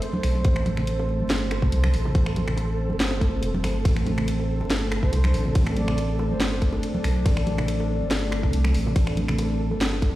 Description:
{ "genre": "deep dubstep", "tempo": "141 BPM", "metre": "4/4", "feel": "half-time", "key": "A minor", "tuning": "A4 = 440 Hz", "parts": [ { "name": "breathy flute-like synth lead", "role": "melody", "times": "0.0-0.6, 5.0-6.6 s", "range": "C5 to D5", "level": "-38 LUFS", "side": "right 1 dB", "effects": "chorus, dub echo" }, { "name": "deep dark ambient pad", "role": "sustained chords", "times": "0.0-10.2 s", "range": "A3 to C5", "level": "-30 LUFS", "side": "equal", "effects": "chorus, built-in reverb" }, { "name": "garage drum kit", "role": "drums", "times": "0.0-10.1 s", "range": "finger snaps, hi-hat, ride cymbal, snare drum", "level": "-30 LUFS", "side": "equal", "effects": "studio reverb" }, { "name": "flickering grainy texture", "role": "texture", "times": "0.0-10.2 s", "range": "A4", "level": "-36 LUFS", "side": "right 1 dB", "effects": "built-in reverb" }, { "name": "congas and bongos", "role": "percussion", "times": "0.1-10.0 s", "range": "none", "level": "-31 LUFS", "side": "right 1 dB", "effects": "none" }, { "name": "soft dub sub bass", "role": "bass", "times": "0.2-10.2 s", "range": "E1 to C2", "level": "-25 LUFS", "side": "equal", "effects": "none" }, { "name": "electronic kick drum", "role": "drums", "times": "0.4-10.1 s", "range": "none", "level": "-21 LUFS", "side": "equal", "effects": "studio reverb" } ], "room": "digital ambience", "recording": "played on a big sound system in a bare room, stone room reverb, vinyl crackle", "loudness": "-21 LUFS", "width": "side -16 dB against mid", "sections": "0.0-10.2 A section", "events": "none", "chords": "0.0 Am" }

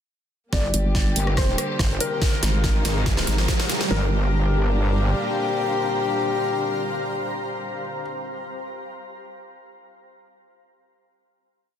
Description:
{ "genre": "heavy wobble dubstep", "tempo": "142 BPM", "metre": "4/4", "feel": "half-time", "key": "G phrygian", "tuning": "A4 = 440 Hz", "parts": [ { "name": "felt-muted upright piano", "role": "melody", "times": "0.5-8.0 s", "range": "Bb4 to D5", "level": "-32 LUFS", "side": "left 3 dB", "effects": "low-pass filter, digital delay" }, { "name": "warm studio string section", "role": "sustained chords", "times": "0.5-8.0 s", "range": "Bb2 to G4", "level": "-31 LUFS", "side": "left 1 dB", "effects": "sidechain pumping" }, { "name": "wobble bass", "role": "bass", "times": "0.5-5.1 s", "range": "G1 to Ab1", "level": "-22 LUFS", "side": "equal", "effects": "chorus, overdrive" }, { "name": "dubstep drum kit", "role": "drums", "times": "0.5-4.0 s", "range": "kick drum, snare drum", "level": "-24 LUFS", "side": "equal", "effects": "overdrive" }, { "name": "dubstep drum kit", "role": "drums", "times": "0.5-3.9 s", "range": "hi-hat, rim click, snare drum", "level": "-26 LUFS", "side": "right 1 dB", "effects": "overdrive, high-pass filter on snare, high-pass filter on hats, high-pass filter on room" }, { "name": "riser", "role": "sound effects", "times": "1.7-3.9 s", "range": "none", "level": "-31 LUFS", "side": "right 1 dB", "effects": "none" }, { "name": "granular cloud pad", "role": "texture", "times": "1.9-8.0 s", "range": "G4 to Bb5", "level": "-30 LUFS", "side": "equal", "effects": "built-in reverb, sidechain pumping" }, { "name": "vowel-sweep wobble bass", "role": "bass", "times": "0.7-3.5 s", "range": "G1 to Ab1", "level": "-21 LUFS", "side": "equal", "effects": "chorus, overdrive" }, { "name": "mellow brass ensemble", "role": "stabs", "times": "1.2-8.0 s", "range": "G3 to Ab4", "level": "-28 LUFS", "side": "left 6 dB", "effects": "digital delay" } ], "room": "light reverb, digital ambience", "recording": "dense, heavily limited modern master", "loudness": "-20 LUFS", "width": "side -9 dB against mid", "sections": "0.5-3.9 build; 3.9-7.3 final chord", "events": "build-up 0.5-3.9; drum fill 0.5-3.9; riser 1.7-3.9", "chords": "0.5 Gm; 2.2 Ab; 3.9 Gm" }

